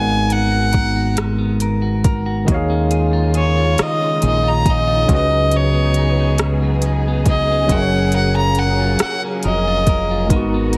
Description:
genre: slow six-eight R&B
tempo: 46 BPM (dotted quarters)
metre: 6/8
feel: straight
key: unclear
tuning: A4 = 443 Hz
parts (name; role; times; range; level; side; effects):
- warm fiddle; melody; 0.0-10.3 s; C#5 to A#5; -22 LUFS; equal; tape echo
- clean electric guitar; second line; 0.0-10.8 s; C#3 to A#4; -26 LUFS; equal; none
- barky tine electric piano; accompaniment; 0.0-10.8 s; C#3 to F#5; -24 LUFS; equal; none
- deep dub fingered electric bass; bass; 0.0-10.8 s; E#1 to D#2; -21 LUFS; equal; none
- smooth R&B drum kit; drums; 0.3-10.8 s; hi-hat, kick drum, rim click; -21 LUFS; equal; overdrive
- warm symphonic string section; sustained chords; 2.5-10.8 s; C#3 to A#4; -30 LUFS; equal; none
room: light reverb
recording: heavily compressed radio sound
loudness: -17 LUFS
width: mono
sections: 0.0-10.8 A section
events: fiddle solo 0.0-10.8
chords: 0.0 G#m9; 2.5 D#9sus4; 5.1 C#9sus4; 7.7 F#maj7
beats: 1.18 | 2.48 3.79 | 5.09 6.39 | 7.70 9.00 | 10.31

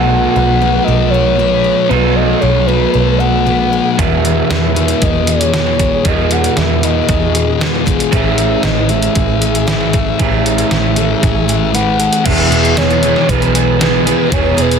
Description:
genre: rock, shoegaze and dream pop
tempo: 116 BPM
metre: 4/4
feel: straight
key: E major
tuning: A4 = 440 Hz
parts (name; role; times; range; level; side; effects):
- pure breathy sine lead; melody; 0.0-14.8 s; B4 to F#5; -18 LUFS; equal; chorus, digital delay
- picked twelve-string acoustic guitar; arpeggios; 0.0-14.8 s; G#4 to B4; -24 LUFS; left 5 dB; wide subtle chorus, digital delay
- electric guitar through a small old amp; riff; 0.0-14.8 s; E2 to G#4; -18 LUFS; right 15 dB; reverse reverb
- thick fuzz guitar; riff; 0.0-14.8 s; E2 to B3; -16 LUFS; left 11 dB; distortion, wide subtle chorus
- vintage muted picked electric bass; bass; 0.0-14.8 s; E1 to E2; -17 LUFS; right 1 dB; none
- detuned 8-bit digital drum machine; drums; 4.0-14.8 s; crash cymbal, hi-hat, kick drum, snare drum; -17 LUFS; right 1 dB; overdrive
room: digital ambience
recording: dense, heavily limited modern master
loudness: -10 LUFS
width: side -6 dB against mid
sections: 0.0-12.3 A section; 12.3-14.8 B section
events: kick and snare drop out 11.7-12.3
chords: 0.0 B7; 4.0 Emaj7; 8.1 Amaj7; 12.3 E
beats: 0.35 0.87 1.39 | 1.90 2.42 2.94 3.46 | 3.97 4.49 5.01 5.53 | 6.04 6.56 7.08 7.60 | 8.12 8.63 9.15 9.67 | 10.19 10.71 11.22 11.74 | 12.26 12.77 13.29 13.81 | 14.32

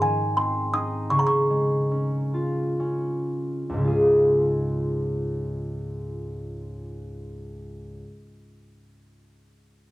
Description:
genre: children's music, lullaby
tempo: 56-84 BPM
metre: 3/4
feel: rubato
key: Db major pentatonic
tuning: A4 = 440 Hz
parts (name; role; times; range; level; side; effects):
- music box; melody; 0.0-2.7 s; Ab5 to Eb6; -24 LUFS; right 1 dB; cassette tape
- concert harp; accompaniment; 0.0-8.2 s; Db2 to Ab5; -24 LUFS; equal; cassette tape
room: moderate booth ambience, RT60 0.2 s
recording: home recording on cassette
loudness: -22 LUFS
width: side -17 dB against mid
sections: 0.0-3.8 A section; 3.8-9.9 B section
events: slowing down 0.0-3.8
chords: 0.0 Ab; 1.1 Db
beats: 0.36 | 1.11 1.91 2.79 | 3.79 4.86 5.93 | 6.97 8.02

